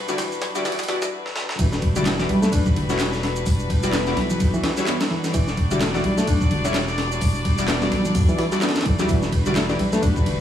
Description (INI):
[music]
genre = breakbeat, breaks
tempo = 128 BPM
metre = 4/4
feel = swing 58% on 16ths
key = unclear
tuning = A4 = 440 Hz
[part]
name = rich chamber string section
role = sustained chords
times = 0.0-10.4 s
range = E3 to D5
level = -27 LUFS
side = left 1 dB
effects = vintage 12-bit sampler grit, sidechain pumping
[part]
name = saturated sub bass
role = bass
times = 0.0-10.4 s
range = E1 to B1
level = -26 LUFS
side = equal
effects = tube saturation
[part]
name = bright reed electric piano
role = riff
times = 0.1-10.3 s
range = D3 to D4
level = -26 LUFS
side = equal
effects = overdrive, fast tremolo, tape echo
[part]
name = orchestra-hit-like synth stab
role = stabs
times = 0.1-9.7 s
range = G3 to D5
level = -27 LUFS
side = left 2 dB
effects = built-in reverb, tape echo
[part]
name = breakbeat sampler-style drum kit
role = drums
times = 0.1-10.4 s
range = hi-hat, kick drum, ride cymbal, snare drum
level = -23 LUFS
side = equal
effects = high-pass filter on kick, small room ambience, high-pass filter on cymbals, high-pass filter on snare, high-pass filter on hats
[part]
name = electronic shaker and handclaps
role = drums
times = 0.1-10.2 s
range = none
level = -32 LUFS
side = right 1 dB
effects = small room ambience
[sound]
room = light reverb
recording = high-pass filter, small room ambience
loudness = -19 LUFS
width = side -10 dB against mid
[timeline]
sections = 0.0-1.6 A section; 1.6-10.4 B section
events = build-up 0.0-1.6; drum fill 0.0-1.1, 1.2-1.6; break 1.1-1.6; drop 1.6-10.4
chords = 0.0 Em9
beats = 0.18 0.65 1.12 | 1.59 2.06 2.53 3.00 | 3.46 3.93 4.40 4.87 | 5.34 5.81 6.28 6.75 | 7.21 7.68 8.15 8.62 | 9.09 9.56 10.03